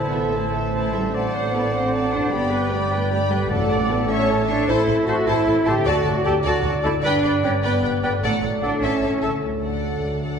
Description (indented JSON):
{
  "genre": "cinematic",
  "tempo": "101 BPM (dotted quarters)",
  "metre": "6/8",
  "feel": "straight",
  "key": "D major",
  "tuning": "A4 = 436 Hz",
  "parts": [
    { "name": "warm studio violin section", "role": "melody", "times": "0.0-10.4 s", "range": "E5 to C#6", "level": "-32 LUFS", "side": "left 6 dB", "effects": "none" },
    { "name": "clear clarinet", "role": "second line", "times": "0.0-9.3 s", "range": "G4 to C5", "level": "-33 LUFS", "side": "equal", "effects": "none" },
    { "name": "hollow concert flute", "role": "second line", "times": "0.0-9.3 s", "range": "F#5 to A5", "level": "-32 LUFS", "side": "equal", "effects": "none" },
    { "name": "warm oboe", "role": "second line", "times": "0.0-9.3 s", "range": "C5 to E5", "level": "-31 LUFS", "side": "equal", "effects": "none" },
    { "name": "warm symphonic violin section", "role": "second line", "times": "0.0-10.4 s", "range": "A4 to E5", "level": "-30 LUFS", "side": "left 4 dB", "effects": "none" },
    { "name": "warm symphonic viola section", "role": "accompaniment", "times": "0.0-10.4 s", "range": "E4 to D5", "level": "-29 LUFS", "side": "equal", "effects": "none" },
    { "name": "mellow French horn section", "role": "sustained chords", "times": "0.0-10.4 s", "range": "A3 to D5", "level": "-30 LUFS", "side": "left 4 dB", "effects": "none" },
    { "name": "mellow trombone section", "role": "sustained chords", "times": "0.0-10.4 s", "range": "G2 to A3", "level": "-32 LUFS", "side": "right 3 dB", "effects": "none" },
    { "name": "concert harp", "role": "arpeggios", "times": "0.0-10.4 s", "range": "G2 to A4", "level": "-29 LUFS", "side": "left 3 dB", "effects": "none" },
    { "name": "mellow trumpet", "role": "stabs", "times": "0.0-9.2 s", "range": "C5 to E5", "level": "-30 LUFS", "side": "right 3 dB", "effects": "none" },
    { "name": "dark studio cello section", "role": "bass", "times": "0.0-10.4 s", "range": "D2 to G4", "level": "-24 LUFS", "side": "right 2 dB", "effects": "none" },
    { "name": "warm symphonic double bass section", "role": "bass", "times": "0.0-10.4 s", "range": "G1 to D2", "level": "-27 LUFS", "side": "right 2 dB", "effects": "none" },
    { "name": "timpani", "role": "percussion", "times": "3.5-4.1 s", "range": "A2", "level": "-31 LUFS", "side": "left 2 dB", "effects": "none" }
  ],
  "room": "wet scoring stage reverb, RT60 1.7 s",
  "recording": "heard from further back in the room",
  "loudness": "-18 LUFS",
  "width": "side -6 dB against mid",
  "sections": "0.0-9.4 A section",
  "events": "none",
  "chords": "0.0 Am; 1.1 D7/A; 2.3 G; 3.5 D/A; 4.1 A; 4.7 Am; 5.9 D; 7.0 G; 8.2 D/A; 8.8 A; 9.4 D"
}